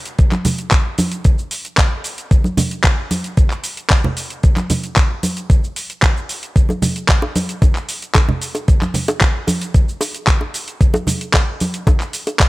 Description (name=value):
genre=nu-disco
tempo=113 BPM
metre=4/4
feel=straight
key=none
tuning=none
part: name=pop drum kit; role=drums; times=0.1-12.5 s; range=handclaps, hi-hat, shaker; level=-20 LUFS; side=equal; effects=none
part: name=electronic kick drum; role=drums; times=0.2-12.5 s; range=none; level=-13 LUFS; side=equal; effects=none
part: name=congas and bongos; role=percussion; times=0.3-12.4 s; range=none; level=-19 LUFS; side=right 1 dB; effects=none
room=digital ambience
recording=none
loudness=-14 LUFS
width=side -19 dB against mid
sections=0.0-12.5 A section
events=none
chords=none